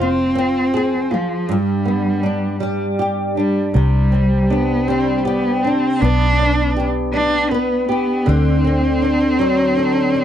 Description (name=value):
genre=pop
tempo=53 BPM (dotted quarters)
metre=6/8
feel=straight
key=unclear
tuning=A4 = 442 Hz
part: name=warm cello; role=melody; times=0.0-10.2 s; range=F3 to D4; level=-18 LUFS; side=right 1 dB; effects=none
part: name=flamenco guitar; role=accompaniment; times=0.0-10.2 s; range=G2 to B4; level=-19 LUFS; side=equal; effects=double-tracked left and right
part: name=vintage muted fingered electric bass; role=bass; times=0.0-10.2 s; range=F1 to D2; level=-19 LUFS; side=equal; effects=none
room=little or no reverb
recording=dry, close 1970s-style studio recording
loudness=-15 LUFS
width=side -10 dB against mid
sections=0.0-10.2 A section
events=none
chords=0.0 Fm; 1.5 G; 3.7 Csus2; 6.0 G/B; 8.3 D7